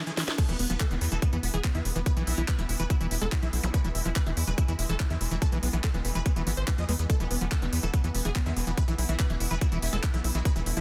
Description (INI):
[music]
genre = psychedelic trance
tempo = 143 BPM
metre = 4/4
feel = straight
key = E major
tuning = A4 = 436 Hz
[part]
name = bubbling stepped-filter texture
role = sustained chords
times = 0.0-10.8 s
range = E3 to B3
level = -43 LUFS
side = equal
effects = chorus, built-in reverb, sidechain pumping
[part]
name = screaming distorted acid line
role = riff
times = 0.0-10.8 s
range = D#3 to G#3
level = -38 LUFS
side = equal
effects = distortion, chorus, sidechain pumping, tape echo
[part]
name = supersaw stab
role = melody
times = 0.1-10.8 s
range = B3 to D#5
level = -39 LUFS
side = equal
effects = phaser, vintage 12-bit sampler grit, sidechain pumping, tape echo
[part]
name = garage drum kit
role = drums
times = 0.1-10.8 s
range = crash cymbal, handclaps, hi-hat, snare drum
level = -37 LUFS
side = equal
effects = none
[part]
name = electronic kick drum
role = drums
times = 0.4-10.5 s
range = none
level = -30 LUFS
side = equal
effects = none
[part]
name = metallic wobble bass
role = second line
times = 0.5-2.6, 7.2-10.5 s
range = E3 to B3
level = -49 LUFS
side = equal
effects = none
[part]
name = tight sequencer bass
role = bass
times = 0.5-10.8 s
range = E1 to E2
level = -32 LUFS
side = equal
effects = none
[part]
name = zap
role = sound effects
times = 3.6-3.7 s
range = none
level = -44 LUFS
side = equal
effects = none
[sound]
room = little or no reverb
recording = dense, heavily limited modern master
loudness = -28 LUFS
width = mono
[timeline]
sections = 0.0-10.8 A section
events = break 0.0-0.4; drum fill 0.0-0.4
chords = 0.0 E5